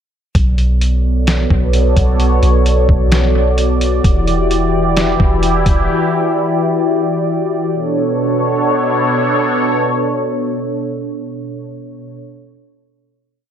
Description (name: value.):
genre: hip hop, atmospheric cloud-rap.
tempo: 130 BPM.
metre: 4/4.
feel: half-time.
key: B minor.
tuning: A4 = 440 Hz.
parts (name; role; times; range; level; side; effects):
sweeping resonant pad; sustained chords; 0.3-12.2 s; B2 to D5; -15 LUFS; equal; chorus, sidechain pumping.
soft 808-style bass; bass; 0.3-5.9 s; E1 to B1; -14 LUFS; equal; none.
trip hop sampler-style drum kit; drums; 0.3-5.8 s; hi-hat, kick drum, snare drum; -16 LUFS; equal; analog delay.
room: digital ambience.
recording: echo-heavy mix.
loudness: -12 LUFS.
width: side -9 dB against mid.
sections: 0.3-7.7 verse; 7.7-11.4 final chord.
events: none.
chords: 0.3 Bm9; 4.0 Em7; 7.7 Bm9.